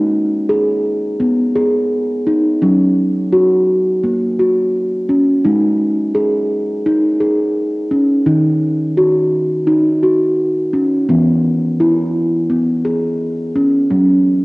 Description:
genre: world meditative, meditative tuned percussion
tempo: 85 BPM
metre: 4/4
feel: swing 56% on 16ths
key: G# minor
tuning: A4 = 441 Hz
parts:
  - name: steel tongue drum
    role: solo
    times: 0.0-14.4 s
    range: D#3 to G#4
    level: -12 LUFS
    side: equal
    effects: cassette tape
room: wet spring reverb, RT60 2.5 s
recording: home recording on cassette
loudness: -12 LUFS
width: side -24 dB against mid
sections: 0.0-5.4 A section; 5.4-14.4 B section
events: none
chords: 0.0 G#m; 2.6 F#; 5.4 G#5; 8.3 D#m; 11.1 E; 13.9 F#5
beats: 0.50 1.21 1.91 | 2.62 3.32 4.03 4.74 | 5.44 6.15 6.85 7.56 | 8.27 8.97 9.68 10.38 | 11.09 11.79 12.50 13.20 | 13.91

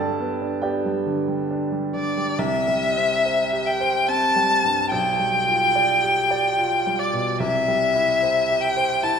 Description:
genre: classical, romantic duo for violin and grand piano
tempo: 67-75 BPM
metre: 3/4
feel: rubato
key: C major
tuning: A4 = 440 Hz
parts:
  - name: clear baby grand piano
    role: accompaniment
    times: 0.0-9.2 s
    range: B1 to A5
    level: -24 LUFS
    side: right 2 dB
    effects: none
  - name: rich violin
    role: melody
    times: 2.0-9.2 s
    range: D5 to A5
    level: -19 LUFS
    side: left 2 dB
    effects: none
room: moderate scoring stage reverb, RT60 1.9 s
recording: minimal, uncompressed stereo recording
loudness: -19 LUFS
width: side -6 dB against mid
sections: 0.0-2.4 A section; 2.4-9.2 B section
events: none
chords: 0.0 G; 2.4 C; 4.9 G7/B; 7.4 C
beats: 0.65 1.51 | 2.40 3.26 4.09 | 4.92 5.75 6.58 | 7.40 8.22 9.03

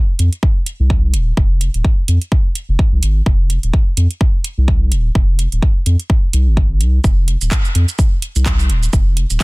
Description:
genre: minimal techno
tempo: 127 BPM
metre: 4/4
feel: swing 57% on 16ths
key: F minor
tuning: A4 = 436 Hz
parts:
  - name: saturated sub bass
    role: bass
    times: 0.2-9.4 s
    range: Eb1 to F2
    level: -14 LUFS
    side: equal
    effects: sidechain pumping
  - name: house drum kit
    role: drums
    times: 0.2-9.4 s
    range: handclaps, hi-hat, shaker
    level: -23 LUFS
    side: right 3 dB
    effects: none
  - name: electronic kick drum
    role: drums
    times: 0.4-9.4 s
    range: none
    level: -14 LUFS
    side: equal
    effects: none
room: little or no reverb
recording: dense, heavily limited modern master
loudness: -12 LUFS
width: side -26 dB against mid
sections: 0.0-9.4 A section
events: none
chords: none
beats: 0.43 0.90 | 1.37 1.85 2.32 2.79 | 3.26 3.73 4.21 4.68 | 5.15 5.62 6.10 6.57 | 7.04 7.51 7.99 8.46 | 8.93 9.40

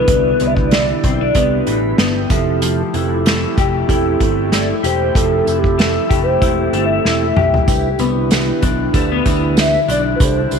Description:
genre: indie pop, bedroom pop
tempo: 95 BPM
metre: 4/4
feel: swing 55% on 16ths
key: C major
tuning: A4 = 441 Hz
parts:
  - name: warbly nostalgic lead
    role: melody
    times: 0.0-10.6 s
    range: G4 to E5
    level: -19 LUFS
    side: equal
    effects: analog chorus, tape echo
  - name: electric guitar through a small old amp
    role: accompaniment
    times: 0.0-10.6 s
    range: E3 to G4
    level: -20 LUFS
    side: left 13 dB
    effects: ensemble chorus, warbly pitch drift
  - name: warbly tape-like pad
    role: sustained chords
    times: 0.0-10.6 s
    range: B2 to G4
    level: -24 LUFS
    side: right 2 dB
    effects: chorus, built-in reverb
  - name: picked electric bass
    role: bass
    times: 0.0-10.6 s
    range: E1 to D2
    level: -21 LUFS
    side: equal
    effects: none
  - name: mellow tonewheel organ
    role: accompaniment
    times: 0.1-10.6 s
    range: C4 to B5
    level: -22 LUFS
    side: right 15 dB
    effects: slow rotary speaker, cassette tape
  - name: unplugged drum kit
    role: drums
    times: 0.1-10.6 s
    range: hi-hat, kick drum, snare drum, toms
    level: -17 LUFS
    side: right 1 dB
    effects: none
  - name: tambourine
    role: percussion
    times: 7.7-10.6 s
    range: none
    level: -33 LUFS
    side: right 15 dB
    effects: none
room: light reverb, small room ambience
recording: 1960s-style stereo with parts hard left and right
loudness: -13 LUFS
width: side -6 dB against mid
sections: 0.0-10.6 A section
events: soft synth lead solo 0.0-10.6; tonewheel organ fill 1.4-2.6; drum fill 7.0-7.7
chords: 0.0 Cmaj9; 2.3 Fmaj9; 7.7 Cmaj9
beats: | 0.09 0.72 1.36 1.99 | 2.62 3.25 3.89 4.52 | 5.15 5.79 6.42 7.05 | 7.68 8.31 8.94 9.57 | 10.20

